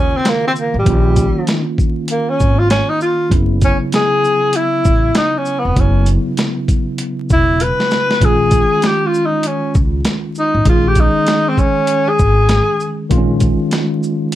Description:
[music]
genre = hip hop, jazz-hop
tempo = 98 BPM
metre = 4/4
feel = swing 62% on 16ths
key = unclear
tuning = A4 = 441 Hz
[part]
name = breathy tenor saxophone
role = melody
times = 0.0-13.0 s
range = G3 to Cb5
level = -15 LUFS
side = equal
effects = none
[part]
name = bright tine electric piano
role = accompaniment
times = 0.0-14.4 s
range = Db3 to Ab4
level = -20 LUFS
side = equal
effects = medium stereo tremolo
[part]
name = upright bass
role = bass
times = 0.0-13.5 s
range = Fb1 to Eb2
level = -16 LUFS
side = equal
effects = none
[part]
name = boom bap sampler-style drum kit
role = drums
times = 0.3-14.4 s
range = hi-hat, kick drum, shaker, snare drum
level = -16 LUFS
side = equal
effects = overdrive
[sound]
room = light reverb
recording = dark, warm production, vinyl crackle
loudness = -12 LUFS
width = side -13 dB against mid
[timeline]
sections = 0.0-14.4 A section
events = tenor saxophone solo 0.0-14.4; drum fill 7.6-8.2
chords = 0.0 Bbm; 3.3 Gb7sus4; 8.2 Bbm11

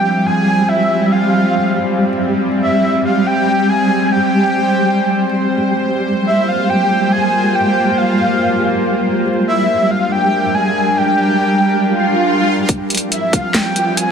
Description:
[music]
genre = deep dubstep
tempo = 140 BPM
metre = 4/4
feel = swing 61% on 16ths, half-time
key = F harmonic minor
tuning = A4 = 441 Hz
[part]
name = breathy flute-like synth lead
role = melody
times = 0.0-14.1 s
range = E5 to Ab5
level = -17 LUFS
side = equal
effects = ensemble chorus, dub echo
[part]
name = bowed-like drone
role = sustained chords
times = 0.0-14.1 s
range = F3 to C5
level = -17 LUFS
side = equal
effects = built-in reverb
[part]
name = flickering grainy texture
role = texture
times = 0.0-14.1 s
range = G3 to F4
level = -18 LUFS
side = right 1 dB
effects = built-in reverb
[part]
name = swell and riser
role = sound effects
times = 11.9-14.1 s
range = none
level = -20 LUFS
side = right 1 dB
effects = none
[part]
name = electronic kick drum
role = drums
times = 12.7-13.4 s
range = none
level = -17 LUFS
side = equal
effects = high-pass filter on kick, high-pass filter on room
[part]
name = garage drum kit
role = drums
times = 12.7-14.1 s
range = hi-hat, snare drum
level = -17 LUFS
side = equal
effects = none
[sound]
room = moderate huge ambient reverb, RT60 7.3 s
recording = dense, heavily limited modern master, vinyl crackle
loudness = -12 LUFS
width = side -7 dB against mid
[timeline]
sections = 0.0-12.7 A section; 12.7-14.1 B section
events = swell 11.9-12.7; build-up 12.7-14.1; riser 12.7-14.1; filter sweep 12.7-14.1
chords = 0.0 Fm; 2.4 C5; 5.8 Bb5; 9.3 Gm; 12.7 Fm

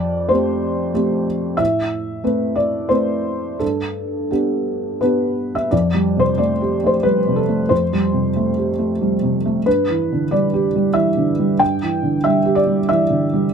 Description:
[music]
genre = neoclassical minimalist piano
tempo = 92 BPM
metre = 3/4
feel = rubato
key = unclear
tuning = A4 = 439 Hz
[part]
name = felt-muted upright piano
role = solo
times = 0.0-13.5 s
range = F2 to G5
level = -16 LUFS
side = equal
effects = none
[sound]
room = light reverb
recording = close, detailed microphones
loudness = -16 LUFS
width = side -6 dB against mid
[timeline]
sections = 0.0-5.7 A section; 5.7-13.5 B section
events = none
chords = 0.0 Fadd9; 1.6 Amadd9; 3.6 G; 5.7 Fadd9; 9.7 G6

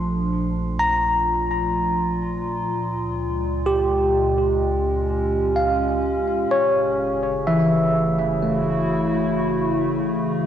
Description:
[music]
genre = ambient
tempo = 63 BPM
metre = 4/4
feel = straight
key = unclear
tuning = A4 = 439 Hz
[part]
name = warbly tape-like pad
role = sustained chords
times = 0.0-10.5 s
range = Bb2 to A4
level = -25 LUFS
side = equal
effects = chorus, built-in reverb, cassette tape
[part]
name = bell-like tine electric piano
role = arpeggios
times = 0.0-10.5 s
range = E3 to C6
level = -21 LUFS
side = equal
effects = phaser, cassette tape, analog delay
[part]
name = warm sub bass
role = bass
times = 0.0-10.5 s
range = F#1 to D2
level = -29 LUFS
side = equal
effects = none
[part]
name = analog drone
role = drone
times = 10.3-10.5 s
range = none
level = barely audible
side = none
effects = none
[sound]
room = wet lush hall reverb, RT60 2.8 s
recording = home recording on cassette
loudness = -19 LUFS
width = side -9 dB against mid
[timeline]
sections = 0.0-10.5 A section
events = fade-in on ambient pad 0.0-10.5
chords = 0.0 Bb; 2.7 C#6; 6.5 F#m7

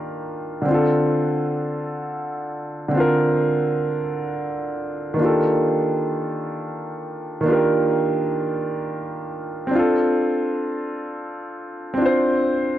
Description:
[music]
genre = R&B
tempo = 53 BPM (dotted quarters)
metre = 6/8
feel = straight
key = unclear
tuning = A4 = 440 Hz
[part]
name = warm concert grand piano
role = solo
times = 0.0-12.8 s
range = D3 to C5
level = -20 LUFS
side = equal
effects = analog delay
[sound]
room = light reverb, small room reverb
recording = dry, gritty hardware recording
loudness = -20 LUFS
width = side -12 dB against mid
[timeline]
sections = 0.0-12.8 A section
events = none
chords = 0.0 Ebmaj9#11; 0.7 Bbmaj9/D; 5.2 Ebmaj9#11; 9.7 Dm7

